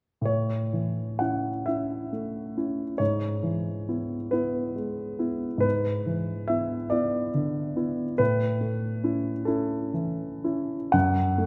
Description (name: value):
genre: classical, romantic nocturne for solo piano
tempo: 39-48 BPM (dotted quarters)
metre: 6/8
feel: rubato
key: A major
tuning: A4 = 445 Hz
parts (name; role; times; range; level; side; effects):
- warm concert grand piano; solo; 0.2-11.5 s; F#2 to F#5; -28 LUFS; equal; none
room: wet concert hall reverb, RT60 1.9 s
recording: none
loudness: -28 LUFS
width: mono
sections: 0.3-11.5 A section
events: none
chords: 0.3 A; 3.0 E/G#; 5.6 E7/G#; 8.2 A; 10.9 F#m